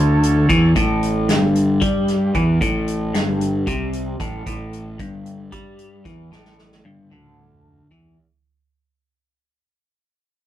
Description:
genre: psychedelic rock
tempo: 227 BPM (eighths)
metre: 7/8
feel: straight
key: unclear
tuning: A4 = 439 Hz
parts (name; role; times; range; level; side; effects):
- combo organ; sustained chords; 0.0-0.7 s; E4 to C#5; -28 LUFS; right 6 dB; none
- clean electric guitar; riff; 0.0-8.2 s; G2 to G3; -18 LUFS; left 1 dB; phaser
- fuzz fingered electric bass; bass; 0.0-8.2 s; G1 to G2; -24 LUFS; right 1 dB; overdrive
- soft-mallet drum kit; drums; 0.2-8.2 s; hi-hat, kick drum, snare drum, toms; -24 LUFS; right 1 dB; none
room: light reverb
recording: rough rehearsal-room recording, warm saturation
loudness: -16 LUFS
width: side -12 dB against mid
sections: 0.0-8.2 A section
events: fade-out 0.0-8.2; drum fill 6.3-8.2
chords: 0.0 A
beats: 0.23 0.49 | 0.76 1.02 1.29 1.55 1.82 2.08 2.35 | 2.61 2.88 3.14 3.40 3.67 3.93 4.20 | 4.46 4.73 4.99 5.26 5.52 5.79 6.05 | 6.32 6.58 6.85 7.12 7.38 7.65 7.91

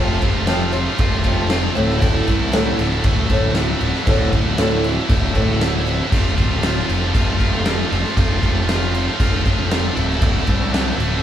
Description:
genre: quiet-loud alternative rock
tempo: 117 BPM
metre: 4/4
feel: straight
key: D minor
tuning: A4 = 441 Hz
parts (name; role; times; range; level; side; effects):
- picked old ladder-braced acoustic guitar; arpeggios; 0.0-6.1 s; D2 to F3; -22 LUFS; equal; none
- heavy high-gain guitar; riff; 0.0-11.2 s; D2 to F4; -22 LUFS; equal; distortion
- fuzz picked electric bass; bass; 0.0-11.2 s; D1 to C2; -22 LUFS; equal; overdrive
- big rock drum kit; drums; 0.2-11.1 s; crash cymbal, kick drum, snare drum; -19 LUFS; equal; none
room: light reverb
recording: band playing live in one room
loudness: -16 LUFS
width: side -10 dB against mid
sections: 0.0-11.2 A section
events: none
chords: 0.0 F; 1.8 Dsus2; 6.1 F; 10.0 Dsus2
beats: 0.49 1.00 1.51 | 2.02 2.54 3.05 3.56 | 4.07 4.59 5.10 5.61 | 6.12 6.64 7.15 7.66 | 8.17 8.69 9.20 9.71 | 10.22 10.73

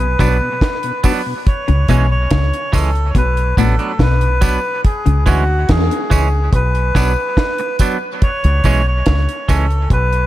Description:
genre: dub reggae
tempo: 71 BPM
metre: 4/4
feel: straight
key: unclear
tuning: A4 = 444 Hz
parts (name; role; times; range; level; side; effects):
- melodica; melody; 0.0-10.3 s; F#4 to C#5; -20 LUFS; equal; dub echo
- mellow tonewheel organ; accompaniment; 0.0-1.3 s; B2 to D4; -26 LUFS; left 3 dB; slow rotary speaker
- clean electric guitar; riff; 0.0-5.2 s; A2 to C#3; -21 LUFS; left 4 dB; ensemble chorus, dub echo
- deep dub fingered electric bass; bass; 0.0-10.3 s; A1 to E2; -15 LUFS; equal; none
- clean electric guitar; accompaniment; 0.2-9.7 s; E3 to D4; -23 LUFS; right 5 dB; dub echo
- deep reggae drum kit; drums; 0.2-10.3 s; hi-hat, kick drum, snare drum; -16 LUFS; equal; none
- tambourine; percussion; 0.2-9.7 s; none; -33 LUFS; right 7 dB; dub echo
room: light reverb, small room reverb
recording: none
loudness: -13 LUFS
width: side -15 dB against mid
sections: 0.0-10.3 A section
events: none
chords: 0.0 Bm; 1.5 C#m; 3.2 Bm; 4.8 C#m; 6.5 Bm; 8.2 C#m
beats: 0.62 | 1.47 2.31 3.16 4.00 | 4.84 5.69 6.53 7.38 | 8.22 9.07 9.91

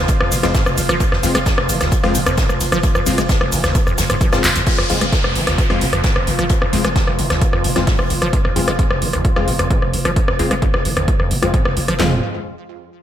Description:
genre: driving peak-time techno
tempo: 131 BPM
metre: 4/4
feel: straight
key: F minor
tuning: A4 = 440 Hz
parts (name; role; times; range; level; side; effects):
- acid bass, saw; riff; 0.0-12.2 s; F1 to Ab3; -23 LUFS; equal; lush chorus, cassette tape, sidechain pumping, ping-pong delay
- growling 808-style bass; bass; 0.0-12.2 s; F1; -24 LUFS; equal; overdrive, sidechain pumping, low-pass filter
- deep dark ambient pad; drone; 0.0-12.0 s; F3 to F4; -27 LUFS; right 1 dB; chorus, built-in reverb, sidechain pumping
- natural country drum kit; drums; 0.1-8.2 s; hi-hat, snare drum; -28 LUFS; left 1 dB; high-pass filter on hats, high-pass filter on snare, high-pass filter on room, gated reverb
- techno drum kit; drums; 0.1-12.1 s; handclaps, kick drum, snare drum, toms; -18 LUFS; equal; none
- techno drum kit; drums; 0.1-12.0 s; crash cymbal, handclaps, hi-hat, ride cymbal, rim click, shaker; -20 LUFS; equal; gated reverb
- supersaw stab; stabs; 0.4-12.2 s; Ab3 to F4; -24 LUFS; left 4 dB; sidechain pumping, low-pass filter, ping-pong delay
- downlifter; sound effects; 4.7-8.3 s; none; -26 LUFS; equal; none
room: light reverb, digital ambience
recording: bright 1980s-style digital production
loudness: -14 LUFS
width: side -10 dB against mid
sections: 0.0-4.7 A section; 4.7-12.0 B section; 12.0-13.0 C section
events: drop 0.0-4.7; drum fill 4.4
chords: 0.0 Fm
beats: 0.09 0.55 | 1.00 1.46 1.92 2.38 | 2.84 3.29 3.75 4.21 | 4.67 5.13 5.58 6.04 | 6.50 6.96 7.42 7.87 | 8.33 8.79 9.25 9.71 | 10.16 10.62 11.08 11.54 | 12.00

